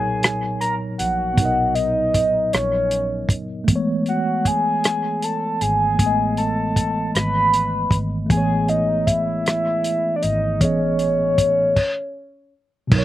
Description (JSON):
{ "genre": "slow six-eight R&B", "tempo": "52 BPM (dotted quarters)", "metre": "6/8", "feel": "straight", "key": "unclear", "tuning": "A4 = 442 Hz", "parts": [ { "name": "soft octave-layered synth lead", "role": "melody", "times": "0.0-12.5 s", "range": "C#5 to B5", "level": "-20 LUFS", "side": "equal", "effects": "chorus, phaser, slapback echo" }, { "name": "mellow tine electric piano", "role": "accompaniment", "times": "0.0-13.0 s", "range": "A2 to D#5", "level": "-24 LUFS", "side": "equal", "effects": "medium stereo tremolo" }, { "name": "vintage muted fingered electric bass", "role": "bass", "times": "0.0-13.0 s", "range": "F#1 to B1", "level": "-27 LUFS", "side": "equal", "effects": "none" }, { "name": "warm soul drum kit", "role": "drums", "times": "0.2-13.0 s", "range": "crash cymbal, hi-hat, kick drum, rim click", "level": "-18 LUFS", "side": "equal", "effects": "none" } ], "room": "little or no reverb", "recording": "recorded outdoors, with no room sound", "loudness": "-18 LUFS", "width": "side -14 dB against mid", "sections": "0.0-12.9 A section", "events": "stop 11.8-12.9", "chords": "0.0 Bmaj9; 3.7 Amaj9", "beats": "0.23 | 1.38 2.53 | 3.69 4.84 | 5.99 7.15 | 8.30 9.46 | 10.61 11.76 | 12.92" }